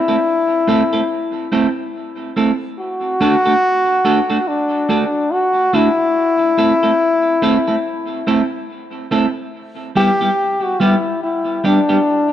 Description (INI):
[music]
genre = reggae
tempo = 71 BPM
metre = 4/4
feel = swing 60% on 16ths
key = unclear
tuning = A4 = 441 Hz
[part]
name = clear trombone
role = melody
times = 0.0-12.3 s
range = D4 to G4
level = -16 LUFS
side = left 2 dB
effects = tape echo
[part]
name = semi-hollow electric guitar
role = accompaniment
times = 0.1-12.0 s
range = G3 to A4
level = -18 LUFS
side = right 2 dB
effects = tape echo
[sound]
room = moderate echo chamber reverb, RT60 1.9 s, studio reverb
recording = none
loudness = -14 LUFS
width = side -11 dB against mid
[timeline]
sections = 0.0-9.5 A section; 9.5-12.3 B section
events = none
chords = 0.0 Am; 2.8 D; 6.2 Am; 9.5 Em; 11.2 G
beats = 0.25 1.10 1.94 | 2.78 3.63 4.47 5.31 | 6.16 7.00 7.84 8.69 | 9.53 10.38 11.22 12.06